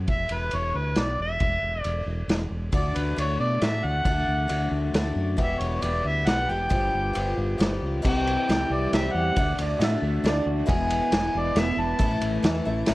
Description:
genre	folk rock and heartland rock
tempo	136 BPM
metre	3/4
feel	straight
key	unclear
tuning	A4 = 440 Hz
part	fingered electric bass	bass	0.0-12.9 s	E1 to B2	-28 LUFS	equal	none
part	mellow harmonica	melody	0.1-12.2 s	B4 to A5	-28 LUFS	equal	analog delay
part	vintage drum kit	drums	0.1-12.9 s	crash cymbal, kick drum, ride cymbal, snare drum	-28 LUFS	equal	none
part	picked twelve-string acoustic guitar	accompaniment	2.7-12.9 s	E2 to G4	-30 LUFS	left 2 dB	none
part	electric guitar through a small old amp	riff	8.0-12.9 s	E2 to G4	-30 LUFS	equal	wide subtle chorus
part	clear upright piano	second line	9.6-10.5 s	D5 to E5	-31 LUFS	right 4 dB	none
room	light reverb, studio reverb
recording	worn, warbling old tape, cassette tape, warbly pitch drift, lossy compression artefacts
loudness	-22 LUFS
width	side -19 dB against mid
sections	0.0-8.0 A section; 8.0-12.9 B section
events	none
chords	0.1 E5; 2.7 D; 5.4 Em; 6.7 G7; 8.0 C; 9.4 D; 10.7 E; 12.0 A

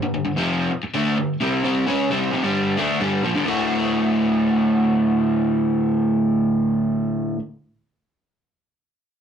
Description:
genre	rock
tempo	131 BPM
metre	4/4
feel	straight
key	D mixolydian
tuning	A4 = 440 Hz
part	crunchy overdriven guitar	solo	0.0-7.4 s	D2 to F#4	-18 LUFS	equal	none
room	wet small room reverb, RT60 0.5 s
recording	rough rehearsal-room recording, warm saturation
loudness	-18 LUFS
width	side -8 dB against mid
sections	0.0-3.5 A section; 3.5-7.1 B section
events	none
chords	0.0 G5; 3.5 D

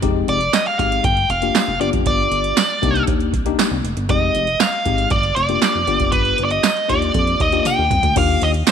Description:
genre	early-eighties boogie funk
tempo	118 BPM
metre	4/4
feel	straight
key	unclear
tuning	A4 = 439 Hz
part	tine electric piano	accompaniment	0.0-8.5 s	Ab3 to G4	-23 LUFS	left 13 dB	none
part	chorused synth bass	bass	0.0-8.6 s	F1 to F2	-22 LUFS	equal	none
part	electro analog drum machine	drums	0.0-8.7 s	crash cymbal, handclaps, hi-hat, kick drum, snare drum, toms	-20 LUFS	right 3 dB	none
part	nasal lead guitar with a parked wah	melody	0.3-8.7 s	B4 to G5	-18 LUFS	right 1 dB	overdrive, slapback echo
part	tambourine	percussion	0.5-8.7 s	none	-28 LUFS	left 16 dB	none
room	moderate echo chamber reverb, RT60 2.3 s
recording	1960s-style stereo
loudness	-15 LUFS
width	side -8 dB against mid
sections	0.0-8.2 A section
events	drum fill 7.7-8.2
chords	0.0 Fm9; 1.0 Gm7; 1.8 G7; 2.8 Cm9; 4.1 Fm9; 5.1 Gm7; 5.9 G7; 6.9 Ebmaj7; 8.2 Ebmaj9

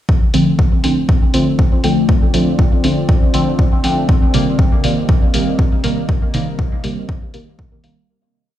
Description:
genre	dub techno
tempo	120 BPM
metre	4/4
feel	straight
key	D phrygian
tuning	A4 = 441 Hz
part	deep dark ambient pad	sustained chords	1.2-8.1 s	C4 to Eb5	-24 LUFS	left 1 dB	chorus, built-in reverb, sidechain pumping
part	electronic kick drum	drums	0.1-7.7 s	none	-14 LUFS	equal	overdrive
part	deep mellow chord stab	stabs	0.3-8.0 s	C3 to C4	-17 LUFS	equal	chorus, phaser, vintage 12-bit sampler grit, sidechain pumping, dub echo
part	electronic hi-hat	drums	0.3-7.9 s	none	-26 LUFS	left 2 dB	none
room	light reverb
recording	played on a big sound system in a bare room, large studio reverb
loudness	-12 LUFS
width	side -12 dB against mid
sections	0.1-8.1 groove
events	fade-out 5.4-8.1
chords	0.1 Dm7; 4.1 Cm7

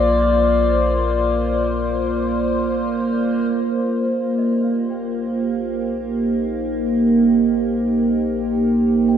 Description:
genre	ambient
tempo	free time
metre	none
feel	none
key	unclear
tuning	A4 = 440 Hz
part	evolving wavetable pad	sustained chords	0.0-9.2 s	Bb3 to D5	-17 LUFS	equal	chorus, built-in reverb
part	deep rumbling drone	bass	0.0-9.2 s	Bb1	-27 LUFS	left 1 dB	built-in reverb
part	small celesta	arpeggios	4.4-9.2 s	D5 to G5	-41 LUFS	equal	none
room	wet plate reverb, RT60 3.4 s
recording	dreamy mix soaked in reverb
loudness	-17 LUFS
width	side -8 dB against mid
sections	0.0-3.5 A section; 3.5-9.2 B section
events	none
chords	0.0 Bbadd9; 3.5 Ebmaj13/Bb

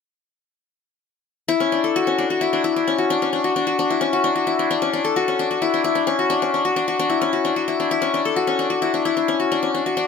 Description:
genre	rock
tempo	262 BPM (eighths)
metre	7/8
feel	straight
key	D major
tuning	A4 = 440 Hz
part	qanun	solo	1.5-10.1 s	C#4 to A4	-18 LUFS	left 4 dB	none
room	moderate studio reverb, RT60 0.9 s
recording	none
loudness	-18 LUFS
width	side -6 dB against mid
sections	1.5-10.1 A section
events	none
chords	1.5 Dmaj9

